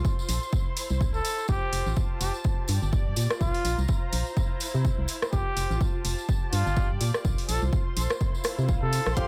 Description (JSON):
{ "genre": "piano house", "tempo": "125 BPM", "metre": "4/4", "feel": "swing 57% on 16ths", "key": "unclear", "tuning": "A4 = 440 Hz", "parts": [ { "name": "organ-like FM bass", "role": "bass", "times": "0.0-9.3 s", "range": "F1 to C3", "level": "-30 LUFS", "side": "equal", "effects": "sidechain pumping" }, { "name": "electronic kick drum", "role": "drums", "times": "0.0-9.3 s", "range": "none", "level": "-29 LUFS", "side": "equal", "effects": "none" }, { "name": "muted studio string section", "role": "texture", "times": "0.0-9.3 s", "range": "E4 to C6", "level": "-39 LUFS", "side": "equal", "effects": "sidechain pumping" }, { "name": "tambourine", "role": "percussion", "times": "0.1-9.3 s", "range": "none", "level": "-43 LUFS", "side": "equal", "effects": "none" }, { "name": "punchy analog drum machine", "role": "drums", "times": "0.3-9.3 s", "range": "hi-hat, rim click", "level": "-35 LUFS", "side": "equal", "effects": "none" }, { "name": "mellow trumpet", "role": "melody", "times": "1.1-9.3 s", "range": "F4 to A4", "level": "-36 LUFS", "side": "equal", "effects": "delay" }, { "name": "swell", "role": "sound effects", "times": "8.4-9.2 s", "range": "none", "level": "-43 LUFS", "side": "equal", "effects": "none" }, { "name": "rich symphonic violin section", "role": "sustained chords", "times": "9.2-9.3 s", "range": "C6", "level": "-39 LUFS", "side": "equal", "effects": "sidechain pumping" }, { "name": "clear grand piano", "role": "riff", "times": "9.2-9.3 s", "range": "F3 to F5", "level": "-31 LUFS", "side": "equal", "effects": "sidechain pumping" }, { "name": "ride cymbal", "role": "drums", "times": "9.2-9.3 s", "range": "none", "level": "-48 LUFS", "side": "equal", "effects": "none" } ], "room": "little or no reverb", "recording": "none", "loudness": "-27 LUFS", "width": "mono", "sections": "0.0-9.3 A section", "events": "swell 8.4-9.2", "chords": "0.0 Bbsus2; 0.5 C; 1.5 F; 2.4 Gsus2; 3.2 Bbsus2; 4.4 C7; 5.3 F; 6.3 Gsus2; 7.0 Bbsus2" }